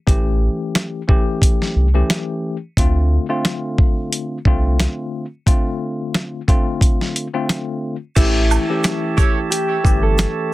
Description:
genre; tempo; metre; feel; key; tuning
hip hop, boom-bap hip-hop; 89 BPM; 4/4; swing 55% on 16ths; D minor; A4 = 440 Hz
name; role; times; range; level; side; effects
tine electric piano; accompaniment; 0.1-10.5 s; D3 to G4; -23 LUFS; left 2 dB; medium stereo tremolo, high-pass filter, low-pass filter
warm sub bass; bass; 0.1-10.3 s; G1 to D2; -17 LUFS; equal; none
dusty soul sampler-style drum kit; drums; 0.1-10.4 s; crash cymbal, hi-hat, kick drum, shaker, snare drum; -16 LUFS; equal; none
mellow electric guitar; melody; 8.2-10.5 s; E4 to A4; -22 LUFS; right 2 dB; high-pass filter, low-pass filter, tape echo
percussive tonewheel organ; sustained chords; 8.2-10.5 s; G4 to A5; -27 LUFS; right 5 dB; overdrive, lush chorus, high-pass filter, low-pass filter
tube shaker and woodblock; percussion; 8.2-10.4 s; none; -28 LUFS; right 14 dB; none
mellow horn section; stabs; 9.2-9.4 s; G4 to C#5; -26 LUFS; right 7 dB; high-pass filter, low-pass filter, tape echo
room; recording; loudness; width
little or no reverb; dense, heavily limited modern master; -16 LUFS; side -18 dB against mid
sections
0.0-8.2 A section; 8.2-10.5 B section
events
none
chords
0.0 A7; 2.8 Dm7; 8.2 A7

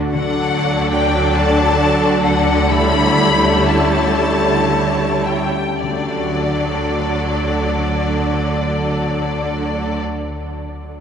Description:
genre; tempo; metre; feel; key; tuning
classical, slow romantic movement for symphony orchestra; 33-51 BPM (dotted quarters); 6/8; rubato; D major; A4 = 441 Hz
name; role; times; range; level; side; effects
warm symphonic viola section; accompaniment; 0.0-10.0 s; F#3 to E4; -22 LUFS; right 1 dB; none
concert harp; arpeggios; 0.0-10.3 s; D3 to D5; -25 LUFS; left 3 dB; none
rich symphonic violin section; melody; 0.1-10.0 s; D5 to B5; -21 LUFS; left 4 dB; none
clear symphonic violin section; second line; 0.1-10.0 s; A4 to D5; -23 LUFS; left 3 dB; none
rich symphonic cello section; bass; 0.1-10.0 s; D3; -23 LUFS; right 1 dB; none
rich symphonic double bass section; bass; 0.1-10.0 s; D2; -21 LUFS; right 2 dB; none
room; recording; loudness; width
wet cathedral reverb, RT60 5.8 s; recorded in a church or concert hall, nothing above 10.6 kHz; -14 LUFS; side -7 dB against mid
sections
0.1-5.8 A section; 5.8-11.0 B section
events
slowing down 0.0-5.8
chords
0.1 D; 2.7 A7/D; 5.8 D

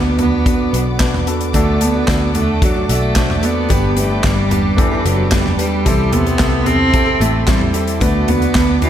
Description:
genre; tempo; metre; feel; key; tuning
piano-driven pop; 111 BPM; 4/4; straight; D mixolydian; A4 = 440 Hz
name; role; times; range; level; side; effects
rich cello; melody; 0.0-8.9 s; E3 to C4; -18 LUFS; right 2 dB; slapback echo
warm grand piano; accompaniment; 0.0-8.9 s; G2 to C5; -20 LUFS; left 3 dB; slapback echo
warm studio string section; sustained chords; 0.0-8.9 s; A4 to D6; -28 LUFS; equal; none
vintage muted fingered electric bass; bass; 0.0-8.9 s; F#1 to D2; -19 LUFS; equal; none
modern studio drum kit; drums; 0.2-8.9 s; handclaps, hi-hat, kick drum, snare drum, toms; -18 LUFS; equal; none
picked steel-string acoustic guitar; riff; 1.5-8.9 s; C3 to D5; -26 LUFS; right 7 dB; none
room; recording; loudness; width
moderate recital hall reverb, RT60 1.5 s, small room ambience; big arena sound; -13 LUFS; side -10 dB against mid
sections
0.0-8.9 A section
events
none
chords
0.0 Bm/D; 1.5 D; 3.7 G; 5.9 C6; 8.0 Bm/D

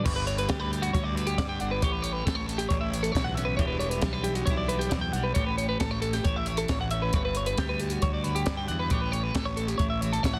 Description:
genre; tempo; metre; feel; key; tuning
math rock and midwest emo; 136 BPM; 4/4; straight; G lydian; A4 = 445 Hz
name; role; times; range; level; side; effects
twelve-string electric guitar; accompaniment; 0.0-10.4 s; G2 to B4; -36 LUFS; equal; tremolo
twelve-string electric guitar; arpeggios; 0.0-10.4 s; F#4 to G5; -33 LUFS; equal; spring reverb
fuzz fingered electric bass; bass; 0.1-10.4 s; E1 to G2; -34 LUFS; equal; overdrive
compact cocktail drum kit; drums; 0.1-10.3 s; crash cymbal, hi-hat, kick drum, snare drum; -32 LUFS; equal; none
room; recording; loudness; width
little or no reverb; dense, heavily limited modern master; -28 LUFS; mono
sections
0.1-10.4 A section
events
none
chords
0.1 Gmaj7; 1.8 A7; 3.6 Em7; 5.4 A7; 7.1 Gmaj7; 8.9 A7

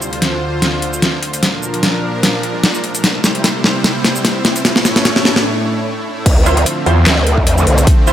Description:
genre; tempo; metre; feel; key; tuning
heavy wobble dubstep; 149 BPM; 4/4; swing 55% on 16ths, half-time; D minor; A4 = 443 Hz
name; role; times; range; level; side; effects
supersaw pad; sustained chords; 0.0-8.1 s; D2 to C#5; -19 LUFS; equal; sidechain pumping
dubstep drum kit; drums; 0.0-8.1 s; crash cymbal, handclaps, hi-hat, shaker, snare drum; -14 LUFS; equal; overdrive
riser; sound effects; 2.1-5.5 s; none; -25 LUFS; right 2 dB; none
growl bass; bass; 6.3-7.9 s; C2 to E2; -12 LUFS; equal; chorus, overdrive
electronic kick drum; drums; 6.3-8.0 s; none; -11 LUFS; equal; overdrive
orchestra-hit-like synth stab; stabs; 6.5-8.1 s; E4 to C5; -19 LUFS; right 4 dB; built-in reverb, dub echo
snarling distorted saw bass; bass; 6.9-7.0 s; E2; -10 LUFS; equal; distortion, overdrive
room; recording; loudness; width
light reverb, digital ambience; none; -12 LUFS; side -11 dB against mid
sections
0.0-6.3 A section; 6.3-8.1 B section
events
build-up 0.0-6.3; drum fill 0.0-5.5; riser 2.1-5.5; break 5.5-6.3; drop 6.3-8.1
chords
0.0 Dm7; 1.4 Bb; 3.0 C; 4.6 A; 6.3 Dm7

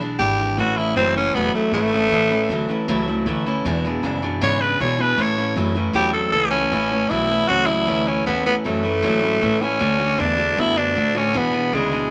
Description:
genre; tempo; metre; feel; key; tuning
rockabilly; 156 BPM; 4/4; straight; A major; A4 = 438 Hz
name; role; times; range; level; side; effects
picked steel-string acoustic guitar; accompaniment; 0.0-12.1 s; E2 to F#4; -28 LUFS; equal; none
upright bass; bass; 0.0-12.1 s; E1 to B2; -30 LUFS; equal; none
growling tenor saxophone; melody; 0.2-12.1 s; G#3 to C#5; -22 LUFS; equal; none
electric guitar through a small old amp; riff; 0.6-12.1 s; E2 to B3; -27 LUFS; equal; none
room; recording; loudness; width
light reverb; none; -20 LUFS; mono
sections
0.0-6.7 A section; 6.7-12.1 B section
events
tenor saxophone solo 0.0-6.7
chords
0.0 E7; 0.6 A; 3.7 E7; 5.2 A; 9.8 D; 11.3 E7

